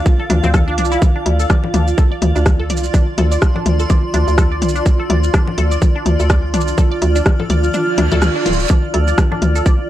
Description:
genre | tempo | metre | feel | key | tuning
minimal techno | 125 BPM | 4/4 | swing 57% on 16ths | D minor | A4 = 440 Hz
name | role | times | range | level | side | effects
granular cloud pad | texture | 0.0-9.9 s | F4 to F6 | -21 LUFS | right 1 dB | built-in reverb, sidechain pumping
booming analog drum machine | drums | 0.1-9.8 s | hi-hat, rim click, shaker | -22 LUFS | equal | none
electronic kick drum | drums | 0.1-9.8 s | none | -13 LUFS | equal | overdrive
electronic toms and congas | percussion | 0.1-9.8 s | none | -22 LUFS | left 4 dB | tape echo
resonant blip pluck | riff | 0.2-9.7 s | C4 to D5 | -26 LUFS | equal | phaser, sidechain pumping, tape echo
hollow knocking FM bass | bass | 0.3-9.6 s | D1 to D2 | -16 LUFS | equal | tube saturation, sidechain pumping
reverse cymbal | sound effects | 7.9-8.7 s | none | -25 LUFS | right 6 dB | none
room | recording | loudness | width
light reverb | dry, gritty hardware recording | -12 LUFS | side -13 dB against mid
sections
0.0-9.9 A section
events
kick drops out 7.7-8.7; reverse cymbal 7.9-8.7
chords
0.0 Dm7

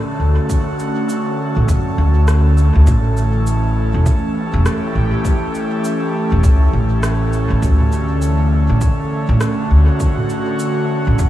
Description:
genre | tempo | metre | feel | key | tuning
ambient dub | 101 BPM | 4/4 | swing 60% on 16ths | unclear | A4 = 440 Hz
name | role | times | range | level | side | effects
airy breathy pad | sustained chords | 0.0-11.3 s | D3 to A4 | -19 LUFS | equal | chorus
upright bass | bass | 0.2-11.3 s | E1 to F#2 | -14 LUFS | equal | tube saturation
electronic kick drum | drums | 0.5-11.3 s | none | -17 LUFS | equal | none
organic electronic drum kit | drums | 0.5-11.3 s | rim click, shaker, toms | -29 LUFS | right 1 dB | dub echo
room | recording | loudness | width
light reverb, digital ambience | small room ambience | -13 LUFS | side -13 dB against mid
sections
0.0-11.3 A section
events
none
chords
0.0 Dmaj7; 2.9 A7; 7.6 Dmaj7

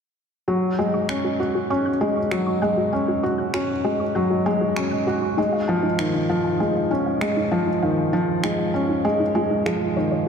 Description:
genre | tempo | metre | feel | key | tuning
piano and strings electronica | 98 BPM | 4/4 | straight | unclear | A4 = 440 Hz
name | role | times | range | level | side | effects
soft round pluck | arpeggios | 0.5-10.2 s | D#4 to F#6 | -29 LUFS | left 2 dB | chorus, diffuse ambient delay
felt-muted upright piano | riff | 0.5-10.3 s | D#3 to F#4 | -20 LUFS | equal | diffuse ambient delay
electronic finger snaps | drums | 1.1-9.8 s | none | -34 LUFS | right 1 dB | small room ambience
room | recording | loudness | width
wet plate reverb, RT60 2.9 s | dreamy mix soaked in reverb | -20 LUFS | side -6 dB against mid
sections
0.5-10.3 A section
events
filter sweep on synth arpeggio sound 0.5-10.3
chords
0.5 F#sus2; 5.4 C#add9

